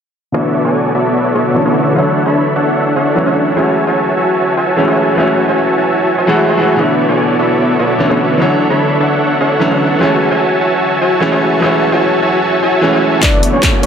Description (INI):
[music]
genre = future bass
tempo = 149 BPM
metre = 4/4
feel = half-time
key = F# minor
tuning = A4 = 440 Hz
[part]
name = bright grand piano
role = accompaniment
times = 0.3-13.9 s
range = D3 to C#5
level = -15 LUFS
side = equal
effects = sidechain pumping, low-pass filter, tape echo
[part]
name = ethereal airy pad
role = sustained chords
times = 1.0-13.9 s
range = D3 to C#5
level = -21 LUFS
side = left 1 dB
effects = ensemble chorus, built-in reverb, sidechain pumping
[part]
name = dense compressed supersaw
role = riff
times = 0.3-13.9 s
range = B3 to B5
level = -13 LUFS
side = equal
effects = sidechain pumping, low-pass filter, tape echo
[part]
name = soft octave-layered synth lead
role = melody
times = 13.2-13.9 s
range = C#5 to D5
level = -16 LUFS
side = left 1 dB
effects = chorus, sidechain pumping
[part]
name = dubstep drum kit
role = drums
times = 13.2-13.9 s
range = handclaps, hi-hat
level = -15 LUFS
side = left 1 dB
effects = none
[part]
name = electronic kick drum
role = drums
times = 13.2-13.7 s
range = none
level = -13 LUFS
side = equal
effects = distortion
[part]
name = riser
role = sound effects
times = 13.4-13.9 s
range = none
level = -23 LUFS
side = right 4 dB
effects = none
[sound]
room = moderate digital room reverb, RT60 1.2 s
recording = none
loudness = -10 LUFS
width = side -7 dB against mid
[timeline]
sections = 0.3-13.2 A section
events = filter sweep on grand piano 0.3-13.2; filter sweep on ambient pad 0.3-13.2; drum fill 13.2-13.9; riser 13.4-13.9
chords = 0.3 Bm11; 2.0 Dmaj7; 3.6 F#m7; 6.8 Bm11; 8.4 Dmaj7; 10.0 F#m7; 13.2 Bm11